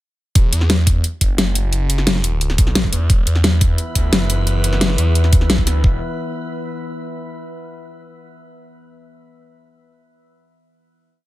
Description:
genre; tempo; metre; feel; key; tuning
dark technical drum and bass; 175 BPM; 4/4; straight; unclear; A4 = 439 Hz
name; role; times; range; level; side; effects
phased detuned saw bass; bass; 0.4-6.0 s; E1 to E2; -17 LUFS; equal; phaser, sidechain pumping
dubstep drum kit; drums; 0.4-5.7 s; hi-hat, snare drum; -18 LUFS; equal; small room ambience
electronic kick drum; drums; 0.4-5.9 s; none; -15 LUFS; equal; small room ambience
metallic inharmonic drone; sustained chords; 3.6-6.0 s; E3 to E5; -27 LUFS; left 1 dB; chorus, built-in reverb, sidechain pumping
room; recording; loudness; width
digital ambience; none; -14 LUFS; side -16 dB against mid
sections
0.4-5.8 drop; 5.8-7.2 final chord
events
drop 0.4-5.8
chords
0.4 E5

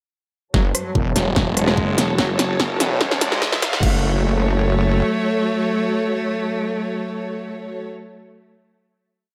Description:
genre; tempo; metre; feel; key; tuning
heavy wobble dubstep; 146 BPM; 4/4; half-time; F# minor; A4 = 442 Hz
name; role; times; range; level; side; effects
rich cello; melody; 0.5-7.9 s; F#2 to A3; -27 LUFS; equal; delay
warm studio string section; sustained chords; 0.5-7.9 s; F#3 to A5; -28 LUFS; equal; sidechain pumping, low-pass filter
wobble bass; bass; 0.5-5.0 s; E1 to C#2; -23 LUFS; equal; chorus, overdrive
big-room dance drum kit; drums; 0.5-3.9 s; crash cymbal, hi-hat, rim click, snare drum; -24 LUFS; equal; overdrive
electronic kick drum; drums; 0.5-3.9 s; none; -24 LUFS; equal; overdrive
riser; sound effects; 2.2-3.8 s; none; -32 LUFS; equal; none
snarling distorted saw bass; bass; 1.2-3.4 s; E1 to F#1; -25 LUFS; equal; distortion, overdrive
room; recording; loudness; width
light reverb; high-pass filter; -20 LUFS; mono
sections
0.5-3.8 build; 3.8-7.1 final chord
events
build-up 0.5-3.8; drum fill 0.5-3.8; filter sweep on string section 0.5-3.8; filter sweep 0.5-3.8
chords
0.5 F#m

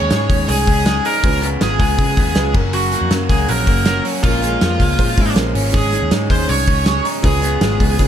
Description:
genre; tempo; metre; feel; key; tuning
jangly indie pop; 160 BPM; 4/4; straight; unclear; A4 = 441 Hz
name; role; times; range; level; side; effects
high-gain lead guitar; melody; 0.0-8.1 s; F4 to Db5; -21 LUFS; right 2 dB; distortion
vibraphone with soft mallets; second line; 0.0-8.1 s; F5 to Db6; -29 LUFS; left 6 dB; digital delay
dark upright piano; accompaniment; 0.0-8.1 s; Db4 to Db5; -27 LUFS; right 4 dB; none
overdriven electric guitar; accompaniment; 0.0-8.1 s; Gb2 to Ab4; -26 LUFS; right 7 dB; none
electric guitar through a small old amp; arpeggios; 0.0-8.1 s; Gb2 to Eb4; -23 LUFS; left 4 dB; none
vintage muted picked electric bass; bass; 0.0-8.1 s; Gb1 to Db3; -20 LUFS; equal; none
loose indie drum kit; drums; 0.1-8.1 s; crash cymbal, hi-hat, kick drum, snare drum; -18 LUFS; equal; none
room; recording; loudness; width
little or no reverb; none; -13 LUFS; side -9 dB against mid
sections
0.0-8.1 A section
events
none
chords
0.0 Absus4; 1.2 Db7; 2.5 Gb; 4.2 Bbm7; 5.7 Absus4; 7.2 Db7

